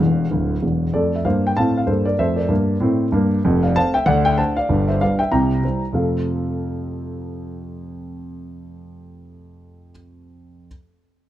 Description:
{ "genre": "jazz, stride piano", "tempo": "192 BPM", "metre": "4/4", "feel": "swing 59% on 8ths", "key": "F major", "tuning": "A4 = 439 Hz", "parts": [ { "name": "dark grand piano", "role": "solo", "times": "0.0-10.7 s", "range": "D1 to Bb5", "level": "-18 LUFS", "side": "equal", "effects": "none" } ], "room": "small room ambience", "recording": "dry, close 1970s-style studio recording", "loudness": "-17 LUFS", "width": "side -13 dB against mid", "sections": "0.9-5.9 A section; 5.9-8.5 B section", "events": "grand piano fill 0.0-0.9", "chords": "0.0 Dmadd9; 0.9 F; 4.1 D7; 4.7 G; 5.3 C7; 5.9 F" }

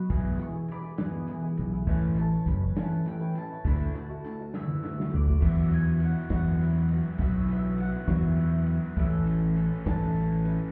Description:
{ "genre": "folk rock and heartland rock", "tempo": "68 BPM (dotted quarters)", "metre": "6/8", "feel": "straight", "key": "E major", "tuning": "A4 = 439 Hz", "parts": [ { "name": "bowl-back mandolin", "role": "melody", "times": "0.0-10.7 s", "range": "D5 to C#6", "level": "-46 LUFS", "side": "equal", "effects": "slapback echo" }, { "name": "picked twelve-string acoustic guitar", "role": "accompaniment", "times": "0.0-10.7 s", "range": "B2 to B4", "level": "-42 LUFS", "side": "equal", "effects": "none" }, { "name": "overdriven electric guitar", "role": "riff", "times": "0.0-10.7 s", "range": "E2 to A4", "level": "-37 LUFS", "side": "equal", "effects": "none" }, { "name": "fingered electric bass", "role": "bass", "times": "0.1-10.6 s", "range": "F#1 to E2", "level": "-28 LUFS", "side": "equal", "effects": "none" }, { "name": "unplugged drum kit", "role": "drums", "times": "0.1-10.6 s", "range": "crash cymbal, hi-hat, kick drum, ride cymbal, snare drum, toms", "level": "-33 LUFS", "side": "equal", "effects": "none" } ], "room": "small room reverb", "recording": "heard muffled through a wall, club reverb, EQ", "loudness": "-27 LUFS", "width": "mono", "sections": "0.0-5.4 A section; 5.4-10.7 B section", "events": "mandolin solo 0.0-5.4; drum fill 4.5-5.4", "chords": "0.1 E/B; 1.9 Aadd9; 3.7 Dadd9; 5.4 Esus2; 9.0 Aadd9" }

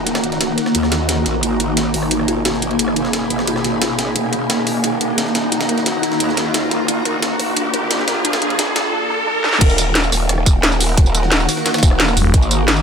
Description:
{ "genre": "dark technical drum and bass", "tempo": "176 BPM", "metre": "4/4", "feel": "straight", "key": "Eb harmonic minor", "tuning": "A4 = 440 Hz", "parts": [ { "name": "swarming drone", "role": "sustained chords", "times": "0.0-12.8 s", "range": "Cb3 to Bb4", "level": "-22 LUFS", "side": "equal", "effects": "built-in reverb, sidechain pumping" }, { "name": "growl bass", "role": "bass", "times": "0.0-12.8 s", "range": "Eb1 to Eb2", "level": "-22 LUFS", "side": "equal", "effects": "chorus, overdrive, sidechain pumping" }, { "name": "riser", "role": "sound effects", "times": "2.8-9.6 s", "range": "none", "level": "-24 LUFS", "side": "right 1 dB", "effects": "none" }, { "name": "granular cloud pad", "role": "texture", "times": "0.0-12.8 s", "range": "Bb3 to Cb6", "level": "-23 LUFS", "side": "left 1 dB", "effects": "built-in reverb, sidechain pumping" }, { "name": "warbly dusty pluck", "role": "arpeggios", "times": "0.1-9.5 s", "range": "D4 to Cb5", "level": "-28 LUFS", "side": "left 1 dB", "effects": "wide subtle chorus, sidechain pumping, dub echo" }, { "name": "breakbeat sampler-style drum kit", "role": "drums", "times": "0.1-12.8 s", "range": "hi-hat, ride cymbal, snare drum", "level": "-25 LUFS", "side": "right 1 dB", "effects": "high-pass filter on cymbals, high-pass filter on snare, high-pass filter on hats" }, { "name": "drum and bass drum kit", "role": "drums", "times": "0.1-12.8 s", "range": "crash cymbal, hi-hat, rim click, snare drum, tambourine", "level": "-18 LUFS", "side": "equal", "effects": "high-pass filter on hats, high-pass filter on snare, high-pass filter on toms, high-pass filter on cymbals, high-pass filter on perc, high-pass filter on room" }, { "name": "electronic kick drum", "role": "drums", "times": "9.6-12.4 s", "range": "none", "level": "-12 LUFS", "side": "equal", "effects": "none" }, { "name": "growling FM bass", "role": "bass", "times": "12.2-12.3 s", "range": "Eb1", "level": "-14 LUFS", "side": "equal", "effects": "none" } ], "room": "light reverb", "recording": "high-pass filter", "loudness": "-14 LUFS", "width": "side -6 dB against mid", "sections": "0.0-9.6 A section; 9.6-12.8 B section", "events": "build-up 0.0-9.6; filter sweep on synth arpeggio sound 0.0-9.6; riser 2.8-9.6; drum fill 9.4; drop 9.6-12.8", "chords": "0.0 Ebm; 1.4 Abmadd9; 4.2 Ebm; 6.9 Bb; 9.6 Ebm" }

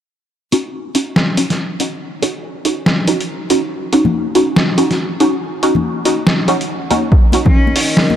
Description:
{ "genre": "deep dubstep", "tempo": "141 BPM", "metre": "4/4", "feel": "swing 61% on 16ths, half-time", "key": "Eb minor", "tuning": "A4 = 440 Hz", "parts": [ { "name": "filtered dub chord stab", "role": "stabs", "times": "0.5-8.0 s", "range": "Db4 to Gb4", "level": "-16 LUFS", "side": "right 1 dB", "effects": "phaser, ensemble chorus, cassette tape, dub echo" }, { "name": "trip hop sampler-style drum kit", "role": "drums", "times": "0.5-8.1 s", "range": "hi-hat, snare drum", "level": "-16 LUFS", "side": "equal", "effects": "small room ambience" }, { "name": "congas", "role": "percussion", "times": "4.0-8.2 s", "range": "none", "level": "-20 LUFS", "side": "left 4 dB", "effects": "none" }, { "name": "dark analog pad", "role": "sustained chords", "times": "7.3-8.2 s", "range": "Eb4 to Eb5", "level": "-22 LUFS", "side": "left 1 dB", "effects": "chorus" }, { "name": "electronic kick drum", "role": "drums", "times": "7.1-7.5 s", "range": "none", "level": "-10 LUFS", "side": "equal", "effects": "small room ambience" }, { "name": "rich cello", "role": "melody", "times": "7.5-7.9 s", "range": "Db4", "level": "-19 LUFS", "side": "left 1 dB", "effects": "dub echo" } ], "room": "moderate huge ambient reverb, RT60 5.1 s", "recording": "dark, warm production", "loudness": "-13 LUFS", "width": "side -10 dB against mid", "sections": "0.3-7.1 A section; 7.1-8.2 B section", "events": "filter sweep on synth stab 0.3-7.1; build-up 7.1-8.2", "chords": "0.3 Ebm7" }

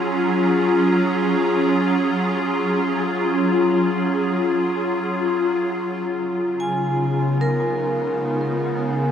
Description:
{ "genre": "ambient", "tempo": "free time", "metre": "none", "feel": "none", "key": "Db mixolydian", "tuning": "A4 = 439 Hz", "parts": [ { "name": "evolving wavetable pad", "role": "sustained chords", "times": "0.0-9.1 s", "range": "Db3 to Bb5", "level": "-18 LUFS", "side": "equal", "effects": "ensemble chorus, built-in reverb" }, { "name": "organ-like drone", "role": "drone", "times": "8.2-9.1 s", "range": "Db3 to Ab3", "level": "-40 LUFS", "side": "right 2 dB", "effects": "none" }, { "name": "vibraphone with hard mallets", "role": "arpeggios", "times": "6.6-9.1 s", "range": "Bb4 to Ab5", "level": "-24 LUFS", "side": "right 1 dB", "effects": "tape echo" } ], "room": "wet huge ambient reverb, RT60 7.7 s", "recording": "in a vast, echoing space", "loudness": "-18 LUFS", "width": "side -8 dB against mid", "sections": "0.0-6.1 A section; 6.1-9.1 B section", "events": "none", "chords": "0.0 Gbmaj9; 6.1 Db7" }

